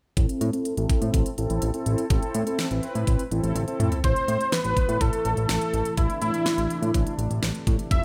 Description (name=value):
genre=synth-pop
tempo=124 BPM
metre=4/4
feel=straight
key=A minor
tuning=A4 = 445 Hz
part: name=mellow synth brass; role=accompaniment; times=0.2-4.0 s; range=C4 to B4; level=-31 LUFS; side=equal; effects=chorus, low-pass filter
part: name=fat analog bass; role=bass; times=0.2-8.0 s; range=F1 to A2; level=-29 LUFS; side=equal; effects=none
part: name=pop drum kit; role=drums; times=0.2-8.0 s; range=hi-hat, kick drum, snare drum, toms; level=-28 LUFS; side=equal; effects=none
part: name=unison lead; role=melody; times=4.0-8.0 s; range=E4 to E5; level=-28 LUFS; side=equal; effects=none
part: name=chorused pulse-width pad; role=sustained chords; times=4.0-8.0 s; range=C3 to F4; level=-36 LUFS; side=equal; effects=none
room=light reverb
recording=none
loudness=-25 LUFS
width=mono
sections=0.2-4.0 A section; 4.0-8.0 B section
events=filter sweep on analog polysynth 0.2-4.0; drum fill 3.6-4.0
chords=0.2 Am